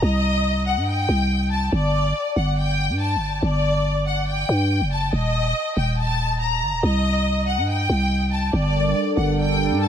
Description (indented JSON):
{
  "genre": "hip hop",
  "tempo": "141 BPM",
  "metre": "4/4",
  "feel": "half-time",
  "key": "G harmonic minor",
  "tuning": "A4 = 442 Hz",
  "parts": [
    { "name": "clear studio violin section", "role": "melody", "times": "0.0-9.9 s", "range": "D5 to Bb5", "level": "-23 LUFS", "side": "left 2 dB", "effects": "analog delay" },
    { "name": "growling 808-style bass", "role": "bass", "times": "0.0-9.9 s", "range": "Eb1 to G2", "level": "-21 LUFS", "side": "equal", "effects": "none" },
    { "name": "sweeping resonant pad", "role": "sustained chords", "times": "8.5-9.9 s", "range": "G3 to Bb4", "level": "-22 LUFS", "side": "right 3 dB", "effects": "chorus" }
  ],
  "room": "moderate plate reverb, RT60 3.4 s",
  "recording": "dreamy mix soaked in reverb",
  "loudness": "-19 LUFS",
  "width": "side -9 dB against mid",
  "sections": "0.0-9.9 A section",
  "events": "none",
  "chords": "0.0 Cm; 1.7 G5; 5.1 Eb5; 6.8 Cm; 8.5 Gmadd9",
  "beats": "| 0.02 0.45 0.87 1.30 | 1.73 2.15 2.58 3.00 | 3.43 3.85 4.28 4.70 | 5.13 5.55 5.98 6.41 | 6.83 7.26 7.68 8.11 | 8.53 8.96 9.38 9.81"
}